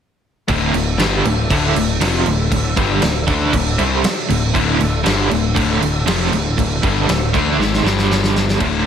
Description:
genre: hard rock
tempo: 118 BPM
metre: 4/4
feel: straight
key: unclear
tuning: A4 = 442 Hz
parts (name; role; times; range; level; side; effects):
- bright tonewheel organ; sustained chords; 0.5-8.6 s; G3 to E5; -27 LUFS; equal; slow rotary speaker, chorus vibrato
- cranked stack guitar; riff; 0.5-8.9 s; D2 to D4; -20 LUFS; right 9 dB; overdrive, tremolo
- sludgy distorted guitar; riff; 0.5-8.9 s; D2 to D4; -20 LUFS; left 8 dB; overdrive
- growling picked electric bass; bass; 0.5-8.8 s; D1 to D2; -21 LUFS; equal; overdrive
- big rock drum kit; drums; 0.5-8.7 s; crash cymbal, kick drum, snare drum; -20 LUFS; equal; none
room: light reverb, studio ambience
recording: none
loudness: -14 LUFS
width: side -8 dB against mid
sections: 0.5-8.6 A section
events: drum fill 7.6-8.6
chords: 0.5 D5; 7.8 G5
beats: | 0.48 0.99 1.50 2.00 | 2.51 3.02 3.53 4.04 | 4.54 5.05 5.56 6.07 | 6.57 7.08 7.59 8.10 | 8.61

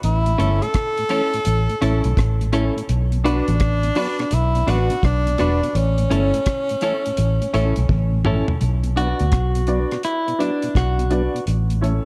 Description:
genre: roots reggae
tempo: 84 BPM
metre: 4/4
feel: swing 65% on 16ths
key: B minor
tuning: A4 = 439 Hz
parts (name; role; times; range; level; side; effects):
- clear tenor saxophone; melody; 0.0-8.3 s; C#4 to A4; -25 LUFS; equal; none
- vintage muted fingered electric bass; bass; 0.0-12.0 s; E1 to D2; -22 LUFS; equal; none
- deep reggae drum kit; drums; 0.0-12.0 s; hi-hat, kick drum, rim click, toms; -27 LUFS; equal; none
- mellow tonewheel organ; accompaniment; 0.3-11.9 s; A2 to D4; -32 LUFS; equal; overdrive, chorus vibrato, slow rotary speaker
- clean electric guitar; accompaniment; 0.4-11.4 s; C#4 to B4; -29 LUFS; equal; none
- warm upright piano; stabs; 0.4-12.1 s; C#4 to D5; -30 LUFS; equal; none
room: light reverb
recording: none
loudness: -20 LUFS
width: mono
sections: 0.0-8.6 A section; 8.6-12.1 B section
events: drum fill 7.9-8.6; clean electric guitar solo 8.6-12.1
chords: 0.0 A; 2.9 Bm; 5.7 A; 8.6 Bm; 11.5 A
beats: | 0.03 0.74 1.46 2.17 | 2.89 3.60 4.32 5.03 | 5.75 6.46 7.18 7.89 | 8.61 9.32 10.04 10.76 | 11.47

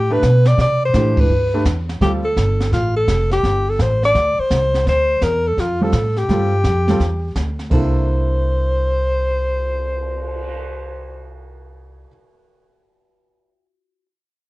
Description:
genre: jazz, small-group swing and bop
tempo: 168 BPM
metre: 4/4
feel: swing 66% on 8ths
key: C mixolydian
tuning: A4 = 441 Hz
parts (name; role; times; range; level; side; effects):
- clear alto saxophone; melody; 0.0-11.3 s; F4 to D5; -19 LUFS; left 1 dB; none
- upright bass; bass; 0.0-12.0 s; F1 to C3; -19 LUFS; equal; none
- clear baby grand piano; accompaniment; 0.1-2.2, 5.8-12.1 s; C3 to B4; -21 LUFS; right 2 dB; none
- jazz brush drum kit; drums; 0.2-10.5 s; brushed snare drum, crash cymbal, cymbal swell, hi-hat, kick drum, ride cymbal, snare drum; -24 LUFS; equal; none
room: light reverb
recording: worn, warbling old tape, cassette tape, warbly pitch drift, nothing above 10.4 kHz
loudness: -15 LUFS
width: side -19 dB against mid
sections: 0.0-2.0 A section; 2.0-7.7 B section; 7.7-10.6 C section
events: band accent 1.1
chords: 0.0 G; 0.6 C; 1.3 G; 2.0 Dm7; 3.4 Gsus24; 4.9 Dm11; 7.7 C13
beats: 0.23 | 0.58 0.94 1.29 1.65 | 2.01 2.36 2.72 3.08 | 3.43 3.79 4.14 4.50 | 4.86 5.21 5.57 5.93 | 6.29 6.64 7.00 7.36 | 7.71 8.07 8.43 8.79 | 9.14 9.50 9.86 10.22

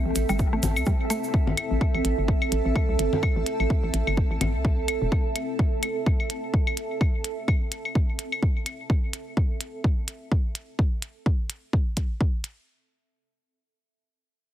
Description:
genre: minimal techno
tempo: 127 BPM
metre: 4/4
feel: swing 57% on 16ths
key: A minor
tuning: A4 = 440 Hz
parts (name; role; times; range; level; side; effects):
- granular cloud pad; texture; 0.0-8.9 s; C4 to A5; -30 LUFS; right 3 dB; built-in reverb, sidechain pumping
- hollow knocking FM bass; bass; 0.1-5.1 s; E1 to C2; -26 LUFS; equal; sidechain pumping
- electronic hi-hat; drums; 0.2-12.5 s; none; -31 LUFS; equal; none
- cabasa; percussion; 0.2-1.3 s; none; -37 LUFS; right 3 dB; none
- mallet-like synth pluck; riff; 0.3-1.1 s; G3 to A3; -31 LUFS; equal; chorus, sidechain pumping, ping-pong delay
- claves and congas; percussion; 0.3-8.8 s; none; -32 LUFS; left 4 dB; dub echo
- electronic kick drum; drums; 0.4-12.3 s; none; -23 LUFS; equal; overdrive
room: light reverb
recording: heavily compressed radio sound, multiband compression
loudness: -23 LUFS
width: side -12 dB against mid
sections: 0.0-12.7 A section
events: none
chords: 0.0 Am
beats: 0.39 0.87 | 1.34 1.81 2.28 2.76 | 3.23 3.70 4.17 4.64 | 5.12 5.59 6.06 6.54 | 7.01 7.48 7.95 8.43 | 8.90 9.37 9.84 10.31 | 10.79 11.26 11.73 12.20

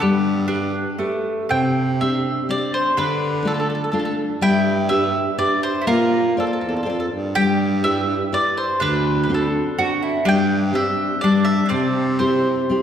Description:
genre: italian folk, Italian serenade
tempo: 123 BPM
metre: 3/4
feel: rubato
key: C major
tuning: A4 = 441 Hz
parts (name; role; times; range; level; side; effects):
- mandolin; melody; 0.0-12.8 s; G4 to G5; -23 LUFS; equal; none
- mandolin; second line; 0.0-12.8 s; A3 to G4; -26 LUFS; right 3 dB; none
- nylon-string guitar; accompaniment; 0.0-12.8 s; C3 to D5; -21 LUFS; left 2 dB; none
- mellow baritone saxophone; bass; 0.0-12.7 s; D2 to D3; -24 LUFS; right 1 dB; none
room: wet concert hall reverb, RT60 2.1 s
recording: heard from further back in the room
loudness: -17 LUFS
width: side -9 dB against mid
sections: 0.0-1.5 A section; 1.5-12.8 B section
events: none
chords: 0.0 Gadd9; 1.5 Csus2; 3.0 Dm; 4.4 G; 5.9 Bbadd9; 7.4 G6; 8.8 D7; 10.3 Gsus4; 11.2 G5; 11.7 C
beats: | 0.02 0.50 1.00 | 1.50 2.00 2.50 | 2.98 3.46 3.95 | 4.43 4.92 5.40 | 5.88 6.37 6.86 | 7.35 7.85 8.33 | 8.82 9.31 9.79 | 10.27 10.76 11.24 | 11.72 12.20 12.70

